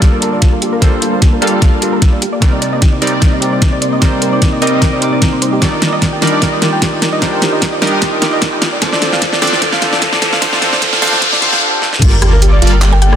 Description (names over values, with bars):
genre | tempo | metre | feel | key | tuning
future bass | 150 BPM | 4/4 | swing 53% on 16ths, half-time | G minor | A4 = 440 Hz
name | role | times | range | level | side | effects
bell-like tine electric piano | accompaniment | 0.0-12.0 s | C3 to D6 | -18 LUFS | right 1 dB | sidechain pumping, tape echo
ethereal airy pad | sustained chords | 0.0-13.2 s | G3 to D6 | -24 LUFS | left 2 dB | none
soft round pluck | arpeggios | 0.0-13.2 s | F4 to C6 | -22 LUFS | right 2 dB | chorus, sidechain pumping, tape echo
supersaw stab | riff | 0.0-13.2 s | F3 to F5 | -17 LUFS | right 1 dB | sidechain pumping, low-pass filter, tape echo
saturated sub bass | bass | 0.0-13.2 s | G1 to Eb2 | -15 LUFS | equal | sidechain pumping, high-pass filter
electronic kick drum | drums | 0.0-12.1 s | none | -12 LUFS | equal | none
pop drum kit | drums | 0.0-13.2 s | crash cymbal, handclaps, hi-hat, rim click, snare drum | -16 LUFS | equal | soft clipping on snare
riser, swell and sub drop | sound effects | 7.8-13.2 s | none | -19 LUFS | left 1 dB | none
mallet-like synth pluck | melody | 12.9-13.2 s | G5 | -17 LUFS | left 2 dB | chorus, sidechain pumping
room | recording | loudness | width
moderate lush hall reverb, RT60 2.0 s | dense, heavily limited modern master, high-pass filter | -10 LUFS | side -9 dB against mid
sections
0.0-12.0 A section; 12.0-13.2 B section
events
build-up 0.0-12.0; drum fill 0.0-11.6, 11.8; filter sweep on supersaw synth 0.0-12.0; filter sweep on synth arpeggio sound 0.0-12.0; filter sweep 0.0-12.0; riser 7.8-11.6; swell 11.2-12.0; break 11.6-12.0; drop 12.0-13.2; impact 12.0-13.2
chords
0.0 Gm9; 2.2 Cm9; 5.6 Ebmaj7; 8.6 Dm7; 12.0 Gm9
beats
0.02 0.42 | 0.82 1.22 1.62 2.02 | 2.42 2.82 3.22 3.62 | 4.02 4.42 4.82 5.22 | 5.62 6.02 6.42 6.82 | 7.22 7.62 8.02 8.42 | 8.82 9.22 9.62 10.02 | 10.42 10.82 11.22 11.62 | 12.02 12.42 12.82